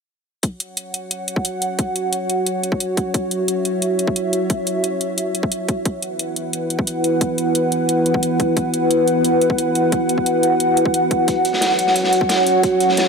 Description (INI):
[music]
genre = dark technical drum and bass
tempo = 177 BPM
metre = 4/4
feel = straight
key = unclear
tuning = A4 = 441 Hz
[part]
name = dark analog pad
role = sustained chords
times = 0.9-13.1 s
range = E4 to F#5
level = -17 LUFS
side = equal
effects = chorus, sidechain pumping
[part]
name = electronic hi-hat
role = drums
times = 0.4-13.0 s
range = none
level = -24 LUFS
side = equal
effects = none
[part]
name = electronic kick drum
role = drums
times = 0.4-12.7 s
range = none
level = -22 LUFS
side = left 1 dB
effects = overdrive, high-pass filter on kick
[part]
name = crunchy breakbeat drum kit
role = drums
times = 11.3-13.1 s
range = hi-hat, snare drum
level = -22 LUFS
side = left 1 dB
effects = high-pass filter on hats, high-pass filter on snare, high-pass filter on room
[sound]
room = wet huge ambient reverb, RT60 6.3 s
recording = dreamy mix soaked in reverb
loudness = -17 LUFS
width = side -5 dB against mid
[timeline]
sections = 0.4-13.1 A section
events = none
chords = 0.4 F#5; 5.9 E5; 11.3 F#5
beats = | 0.43 0.77 1.11 1.45 | 1.79 2.13 2.47 2.81 | 3.14 3.48 3.82 4.16 | 4.50 4.84 5.18 5.52 | 5.86 6.19 6.53 6.87 | 7.21 7.55 7.89 8.23 | 8.57 8.91 9.24 9.58 | 9.92 10.26 10.60 10.94 | 11.28 11.62 11.96 12.30 | 12.63 12.97